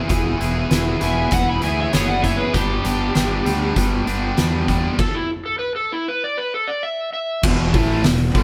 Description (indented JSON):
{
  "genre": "blues rock power trio and southern rock",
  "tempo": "98 BPM",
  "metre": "4/4",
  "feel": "straight",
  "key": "unclear",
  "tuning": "A4 = 440 Hz",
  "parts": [
    { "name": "distorted electric guitar", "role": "riff", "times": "0.0-8.4 s", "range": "E2 to G#4", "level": "-24 LUFS", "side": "equal", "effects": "distortion" },
    { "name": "fuzz fingered electric bass", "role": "bass", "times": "0.1-8.4 s", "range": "E1 to E2", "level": "-26 LUFS", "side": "equal", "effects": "overdrive" },
    { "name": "oversized low-tuned drum kit", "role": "drums", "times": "0.1-8.4 s", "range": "crash cymbal, hi-hat, kick drum, snare drum", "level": "-24 LUFS", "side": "equal", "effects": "none" },
    { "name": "overdriven slide guitar", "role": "melody", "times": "1.0-7.4 s", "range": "E4 to B5", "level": "-25 LUFS", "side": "equal", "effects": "none" },
    { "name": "smooth overdriven lead guitar", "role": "second line", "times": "1.0-3.7 s", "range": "D4 to G#5", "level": "-34 LUFS", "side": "equal", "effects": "none" }
  ],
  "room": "light reverb",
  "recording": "band playing live in one room",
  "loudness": "-20 LUFS",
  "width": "mono",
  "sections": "0.0-7.4 A section; 7.4-8.4 B section",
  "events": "stop 5.0-7.4",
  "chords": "0.0 E; 2.5 G; 5.0 N.C.; 7.4 E5"
}